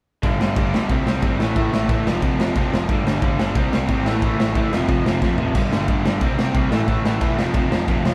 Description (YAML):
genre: punk rock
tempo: 180 BPM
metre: 4/4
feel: straight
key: unclear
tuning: A4 = 440 Hz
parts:
  - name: crunchy overdriven guitar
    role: riff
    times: 0.2-8.1 s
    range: F2 to C4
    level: -26 LUFS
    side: equal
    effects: none
  - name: overdriven electric guitar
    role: riff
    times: 0.2-8.1 s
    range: F2 to C4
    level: -27 LUFS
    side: equal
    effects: none
  - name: growling picked electric bass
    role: bass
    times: 0.2-8.1 s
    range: E1 to D2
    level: -28 LUFS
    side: equal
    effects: overdrive
  - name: raw garage drum kit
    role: drums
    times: 0.2-8.1 s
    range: crash cymbal, kick drum, snare drum, toms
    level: -23 LUFS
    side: equal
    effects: none
room: moderate studio ambience, RT60 0.5 s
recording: band playing live in one room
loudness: -20 LUFS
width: mono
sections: 0.2-8.1 A section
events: drum fill 5.2-5.6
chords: 0.2 G5; 0.9 C5; 1.4 A5; 2.1 F5; 2.9 G5; 3.6 C5; 4.1 A5; 4.7 F; 5.6 G5; 6.2 C5; 6.7 A5; 7.4 F5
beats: | 0.24 0.57 0.90 1.23 | 1.56 1.90 2.23 2.56 | 2.90 3.23 3.56 3.89 | 4.23 4.56 4.89 5.22 | 5.56 5.89 6.22 6.56 | 6.89 7.22 7.55 7.89